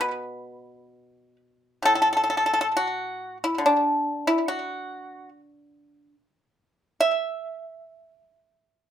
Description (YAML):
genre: chinese traditional, Chinese solo plucked strings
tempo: 63-74 BPM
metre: 4/4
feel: rubato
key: D gong mode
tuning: A4 = 438 Hz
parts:
  - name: pipa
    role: solo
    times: 0.0-8.9 s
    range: A2 to E5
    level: -22 LUFS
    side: equal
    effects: slapback echo
room: moderate small room ambience, RT60 0.5 s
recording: none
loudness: -22 LUFS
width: side -10 dB against mid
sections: 0.0-8.9 A section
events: none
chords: none